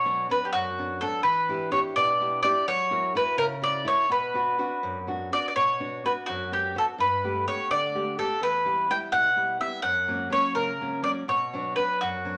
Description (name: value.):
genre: italian folk, Italian serenade.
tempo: 84 BPM (dotted quarters).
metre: 6/8.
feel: straight.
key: B minor.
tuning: A4 = 438 Hz.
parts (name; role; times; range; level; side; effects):
bowl-back mandolin; melody; 0.0-12.4 s; F#4 to G5; -26 LUFS; equal; none.
nylon-string guitar; accompaniment; 0.0-12.4 s; E2 to A#4; -35 LUFS; equal; none.
room: wet studio reverb, RT60 0.7 s.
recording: none.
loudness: -26 LUFS.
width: mono.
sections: 0.0-5.6 A section; 5.6-12.4 A section.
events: none.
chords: 0.0 Bm; 1.3 Em7; 2.7 F#7; 4.1 Bm; 7.0 Gadd9; 8.4 Em; 9.8 F#; 11.3 Bm.